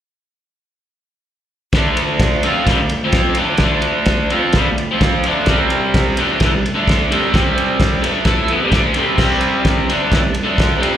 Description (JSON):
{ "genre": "garage rock duo or trio", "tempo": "129 BPM", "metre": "4/4", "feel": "straight", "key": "unclear", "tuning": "A4 = 441 Hz", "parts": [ { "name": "crunchy overdriven guitar", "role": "riff", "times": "1.7-11.0 s", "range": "A2 to A4", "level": "-15 LUFS", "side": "equal", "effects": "spring reverb, slapback echo" }, { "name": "cloth-damped thuddy drum kit", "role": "drums", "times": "1.7-10.9 s", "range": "crash cymbal, kick drum, ride cymbal, snare drum", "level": "-17 LUFS", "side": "equal", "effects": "none" } ], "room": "light reverb, small room ambience", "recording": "live gig heard through the venue's PA, recital hall reverb", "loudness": "-13 LUFS", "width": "side -10 dB against mid", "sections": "1.7-11.0 A section", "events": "none", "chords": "1.7 D5; 5.5 C5" }